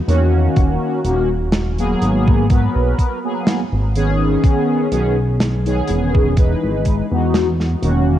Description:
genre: vaporwave.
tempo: 62 BPM.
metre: 4/4.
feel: swing 54% on 16ths.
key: G# minor.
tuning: A4 = 440 Hz.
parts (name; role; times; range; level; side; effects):
mellow synth brass; accompaniment; 0.1-8.2 s; D#3 to B4; -18 LUFS; equal; phaser, analog chorus, analog delay.
chorused synth bass; bass; 0.1-8.2 s; D#1 to E2; -18 LUFS; equal; tube saturation.
modern studio drum kit; drums; 0.1-8.0 s; hi-hat, snare drum; -22 LUFS; right 1 dB; none.
electronic kick drum; drums; 0.6-7.1 s; none; -14 LUFS; equal; none.
room: light reverb, studio ambience.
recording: echo-heavy mix, cassette tape.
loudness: -14 LUFS.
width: side -12 dB against mid.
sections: 0.0-8.2 A section.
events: kick drops out 7.3-8.2.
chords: 0.0 Emaj7sus2; 0.6 D#m7; 2.0 G#m9; 4.4 B69; 6.4 Emaj9.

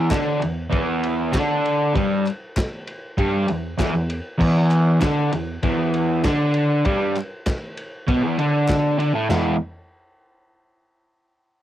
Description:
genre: garage rock duo or trio.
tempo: 98 BPM.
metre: 4/4.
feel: straight.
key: unclear.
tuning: A4 = 440 Hz.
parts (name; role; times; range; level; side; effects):
crunchy overdriven guitar; riff; 0.0-9.5 s; E2 to E4; -19 LUFS; equal; cassette tape.
crunchy breakbeat drum kit; drums; 0.1-9.4 s; china cymbal, crash cymbal, kick drum, ride cymbal, snare drum, toms; -26 LUFS; equal; vintage 12-bit sampler grit, cassette tape.
group handclap; percussion; 0.1-9.6 s; none; -35 LUFS; left 2 dB; none.
room: moderate booth ambience, RT60 0.3 s.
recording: home recording on cassette.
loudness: -19 LUFS.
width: side -12 dB against mid.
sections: 0.0-9.3 A section; 9.3-11.6 B section.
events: none.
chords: 0.0 E5; 9.3 E.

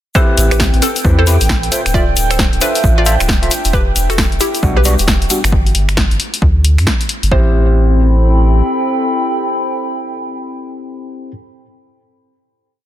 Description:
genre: UK garage, two-step garage.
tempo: 134 BPM.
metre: 4/4.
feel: swing 62% on 16ths.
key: A minor.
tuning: A4 = 442 Hz.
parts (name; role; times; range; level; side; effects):
hollow square pluck; melody; 0.1-11.3 s; C4 to D5; -21 LUFS; equal; chorus, dub echo.
warm analog pad; sustained chords; 0.1-5.5 s; G5; -26 LUFS; right 5 dB; chorus, vintage 12-bit sampler grit, sidechain pumping.
overdriven tine electric piano; stabs; 0.1-11.3 s; G3 to E5; -20 LUFS; left 1 dB; phaser, dub echo.
egg shaker; percussion; 0.1-5.5 s; none; -23 LUFS; left 3 dB; none.
electronic kick drum; drums; 0.2-7.4 s; none; -15 LUFS; equal; overdrive.
warbly tape-like pad; texture; 0.9-11.5 s; C4 to B5; -22 LUFS; equal; chorus, built-in reverb, sidechain pumping.
saturated sub bass; bass; 0.4-8.6 s; D1 to G2; -13 LUFS; equal; none.
punchy analog drum machine; drums; 0.4-7.3 s; finger snaps, hi-hat, snare drum; -17 LUFS; left 1 dB; overdrive.
room: light reverb, digital ambience.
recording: dense, heavily limited modern master.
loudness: -11 LUFS.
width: side -12 dB against mid.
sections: 0.2-7.3 drop; 7.3-10.9 final chord.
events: drop 0.2-7.3.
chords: 0.2 Am9; 1.7 Dm9; 3.7 Em9; 5.5 G5; 7.3 Am9.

